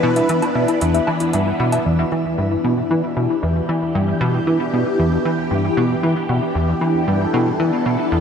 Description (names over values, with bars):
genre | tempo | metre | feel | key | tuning
ambient, sequencer-driven space music | 115 BPM | 4/4 | straight | E minor | A4 = 440 Hz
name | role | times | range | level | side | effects
phased string machine | sustained chords | 0.0-8.2 s | E3 to B4 | -20 LUFS | left 1 dB | ensemble chorus, phaser, shimmer reverb
thumb-piano-like synth pluck | arpeggios | 0.0-8.2 s | E4 to E5 | -28 LUFS | left 2 dB | chorus, auto-pan, tape echo, shimmer reverb
plucky analog bass | riff | 0.0-8.2 s | E2 to E3 | -19 LUFS | equal | analog chorus, tape echo, shimmer reverb
electronic woodblock and hi-hat | percussion | 0.0-1.8 s | none | -31 LUFS | right 1 dB | tape echo
room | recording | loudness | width
wet plate reverb, RT60 3.8 s | none | -16 LUFS | side -7 dB against mid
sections
0.0-1.9 A section; 1.9-8.2 A section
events
none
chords
0.0 Em7